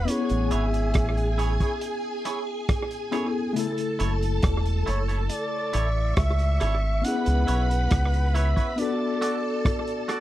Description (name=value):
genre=lovers rock reggae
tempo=69 BPM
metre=4/4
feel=straight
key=unclear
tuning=A4 = 440 Hz
part: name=breathy flugelhorn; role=melody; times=0.0-10.1 s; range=C#5 to F#5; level=-31 LUFS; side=right 1 dB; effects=tape echo
part: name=string machine, violins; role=second line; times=0.0-10.2 s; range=G#4 to C#6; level=-32 LUFS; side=right 1 dB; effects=ensemble chorus
part: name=tine electric piano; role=accompaniment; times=0.0-10.2 s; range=C#3 to A4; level=-30 LUFS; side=left 4 dB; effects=medium stereo tremolo, slapback echo
part: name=deep dub fingered electric bass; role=bass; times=0.0-8.5 s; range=E1 to C#2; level=-24 LUFS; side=equal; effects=none
part: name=vintage drum kit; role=drums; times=0.1-10.2 s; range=hi-hat, kick drum, rim click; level=-27 LUFS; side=equal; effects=slapback echo
part: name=twangy electric guitar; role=stabs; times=0.5-10.2 s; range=E4 to D5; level=-31 LUFS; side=right 4 dB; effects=none
room=little or no reverb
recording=dry, close 1970s-style studio recording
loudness=-22 LUFS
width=side -14 dB against mid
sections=0.0-10.2 A section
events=none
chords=0.1 Amaj7; 3.6 F#m7; 7.0 C#m7; 8.8 Bm7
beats=| 0.08 0.95 1.82 2.69 | 3.56 4.43 5.30 6.17 | 7.04 7.91 8.78 9.65